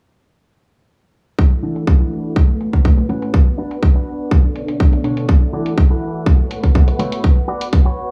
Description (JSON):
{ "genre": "filtered disco house", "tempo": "123 BPM", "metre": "4/4", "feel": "straight", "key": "unclear", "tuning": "A4 = 440 Hz", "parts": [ { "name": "string machine, full ensemble", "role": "sustained chords", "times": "1.4-8.1 s", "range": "A3 to D6", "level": "-27 LUFS", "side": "equal", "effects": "ensemble chorus, sidechain pumping, low-pass filter" }, { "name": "electronic hi-hat", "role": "drums", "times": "1.4-7.8 s", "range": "none", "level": "-38 LUFS", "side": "equal", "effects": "overdrive, sidechain pumping on hats, low-pass filter on hats, low-pass filter on room" }, { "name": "electronic kick drum", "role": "drums", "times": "1.4-7.8 s", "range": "none", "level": "-14 LUFS", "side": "equal", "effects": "overdrive" }, { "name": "electric guitar with an envelope filter", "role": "riff", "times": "1.6-8.1 s", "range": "A2 to D5", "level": "-26 LUFS", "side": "equal", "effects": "sidechain pumping, low-pass filter" } ], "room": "digital ambience", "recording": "dry, gritty hardware recording, small room ambience", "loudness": "-16 LUFS", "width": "mono", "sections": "1.4-8.1 A section", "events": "filter sweep on drum 1.4-8.1; filter sweep 1.4-8.1", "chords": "1.4 E9sus4; 2.4 A69; 3.3 D6; 4.3 Bm9; 5.3 E9sus4; 6.3 A69; 7.2 D6" }